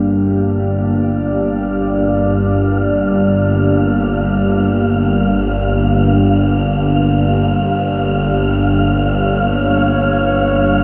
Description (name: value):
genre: dark ambient drone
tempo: free time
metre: none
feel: none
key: G minor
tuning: A4 = 439 Hz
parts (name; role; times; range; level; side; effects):
- deep dark ambient pad; sustained chords; 0.0-10.8 s; Bb3 to D5; -20 LUFS; equal; chorus, built-in reverb
- bowed-like drone; drone; 0.0-10.8 s; G1 to G2; -17 LUFS; equal; built-in reverb
- wind-like tuned noise texture; texture; 0.0-10.8 s; F5; -25 LUFS; equal; built-in reverb
room: wet huge ambient reverb, RT60 7.5 s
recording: none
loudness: -15 LUFS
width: mono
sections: 0.0-10.8 A section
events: fade-in on synth texture 0.0-10.8; filter sweep on synth drone 0.0-10.8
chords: 0.0 Gm